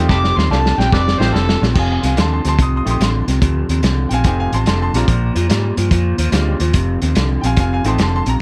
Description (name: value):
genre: electric blues shuffle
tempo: 144 BPM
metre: 4/4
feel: swing 66% on 8ths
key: F mixolydian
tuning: A4 = 440 Hz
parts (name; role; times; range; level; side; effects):
- clear upright piano; accompaniment; 0.0-8.4 s; Ab3 to Eb6; -25 LUFS; equal; none
- electric guitar through a small old amp; riff; 0.0-8.4 s; F2 to G3; -23 LUFS; equal; subtle chorus
- vintage muted fingered electric bass; bass; 0.0-8.4 s; F1 to Ab2; -20 LUFS; equal; none
- overdriven harmonica; second line; 0.1-1.6 s; A4 to D6; -22 LUFS; equal; none
- vintage drum kit; drums; 0.1-8.3 s; crash cymbal, hi-hat, kick drum, snare drum; -21 LUFS; equal; none
room: light reverb, studio reverb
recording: none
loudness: -16 LUFS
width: mono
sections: 0.0-1.8 A section; 1.8-8.4 A section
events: harmonica solo 0.0-1.8; drum fill 0.1-1.8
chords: 0.1 F7; 5.1 Bb7; 6.7 F7